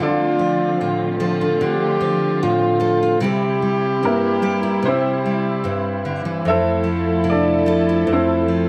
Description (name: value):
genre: acoustic folk-pop ballad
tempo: 74 BPM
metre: 4/4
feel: straight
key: F major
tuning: A4 = 445 Hz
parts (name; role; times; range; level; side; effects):
- clear upright piano; melody; 0.0-8.7 s; Bb3 to E5; -23 LUFS; equal; none
- clear French horn; second line; 0.0-8.7 s; E4 to G4; -24 LUFS; equal; none
- nylon-string guitar; accompaniment; 0.0-8.7 s; F2 to A4; -23 LUFS; equal; none
- muted studio string section; sustained chords; 0.0-8.7 s; D3 to A4; -28 LUFS; equal; none
room: moderate large studio reverb, RT60 1.2 s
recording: none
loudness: -19 LUFS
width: mono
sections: 0.0-8.7 A section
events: none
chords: 0.0 Dm7; 3.2 C; 6.5 Fmaj7